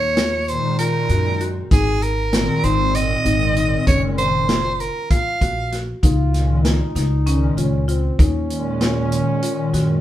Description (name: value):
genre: progressive instrumental, band music in an uneven meter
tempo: 194 BPM (eighths)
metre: 7/8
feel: straight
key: Ab mixolydian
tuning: A4 = 440 Hz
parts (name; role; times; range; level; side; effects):
- raspy soprano saxophone; melody; 0.0-5.8 s; Ab4 to F5; -21 LUFS; right 2 dB; none
- upright bass; bass; 0.0-10.0 s; Gb1 to Gb2; -21 LUFS; equal; none
- buzzing marimba with medium mallets; arpeggios; 0.2-9.9 s; C4 to Gb4; -27 LUFS; left 5 dB; none
- vintage drum kit; drums; 0.2-9.9 s; hi-hat, kick drum, snare drum; -20 LUFS; equal; none
- hollow soft pad; accompaniment; 0.5-10.0 s; Bb2 to Eb4; -23 LUFS; equal; ensemble chorus
- clear trombone; second line; 6.0-10.0 s; C4 to F4; -27 LUFS; right 3 dB; none
room: moderate studio reverb, RT60 0.6 s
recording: band playing live in one room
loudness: -16 LUFS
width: side -13 dB against mid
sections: 0.0-10.0 A section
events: none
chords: 0.0 Ebm9; 1.7 Abadd9; 3.9 Gbmaj9; 6.0 Db6; 8.2 Ebm9